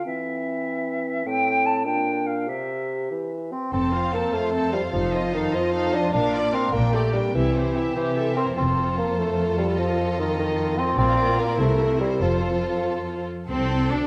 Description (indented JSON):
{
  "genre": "quick classical-period movement for symphony orchestra",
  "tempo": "99 BPM (dotted quarters)",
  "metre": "6/8",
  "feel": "rubato",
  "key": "F major",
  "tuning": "A4 = 440 Hz",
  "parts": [
    { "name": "silver concert flute", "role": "second line", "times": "0.0-3.1 s", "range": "E5 to A5", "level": "-28 LUFS", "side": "equal", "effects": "none" },
    { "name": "mellow clarinet", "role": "second line", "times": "0.1-3.5 s", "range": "C4 to G4", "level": "-33 LUFS", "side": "equal", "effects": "none" },
    { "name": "mellow bassoon", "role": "accompaniment", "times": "0.1-13.3 s", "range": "A2 to D4", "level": "-27 LUFS", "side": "equal", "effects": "none" },
    { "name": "rich studio violin section", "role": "melody", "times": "3.7-14.1 s", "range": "C4 to A5", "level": "-36 LUFS", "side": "equal", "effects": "none" },
    { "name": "rich studio violin section", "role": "second line", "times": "3.7-14.1 s", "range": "E4 to D5", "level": "-35 LUFS", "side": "equal", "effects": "none" },
    { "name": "rich studio viola section", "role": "accompaniment", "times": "3.7-14.1 s", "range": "C4 to Bb4", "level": "-33 LUFS", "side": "equal", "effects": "none" },
    { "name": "clear studio cello section", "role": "bass", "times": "3.7-14.1 s", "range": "F2 to D4", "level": "-30 LUFS", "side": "equal", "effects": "none" },
    { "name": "rich studio double bass section", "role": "bass", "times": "3.7-9.0, 11.0-14.1 s", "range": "F1 to D2", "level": "-29 LUFS", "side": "equal", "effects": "none" }
  ],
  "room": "moderate scoring stage reverb, RT60 1.6 s",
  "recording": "none",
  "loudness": "-23 LUFS",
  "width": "mono",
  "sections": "0.0-3.7 A section; 3.7-13.5 B section",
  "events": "none",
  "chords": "0.1 C/E; 1.3 Am; 1.9 Bb; 2.5 C; 3.7 F; 4.9 F7; 6.1 Bb; 6.7 Gm/Bb; 7.3 C; 8.6 F; 9.8 F7; 11.0 Bb; 11.6 C7; 12.2 F; 13.5 Amadd11/C",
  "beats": "| 0.07 0.66 | 1.26 1.86 | 2.48 3.11 | 3.73 4.33 | 4.94 5.54 | 6.14 6.74 | 7.35 7.96 | 8.58 9.19 | 9.79 10.39 | 10.99 11.60 | 12.22 12.86 | 13.49"
}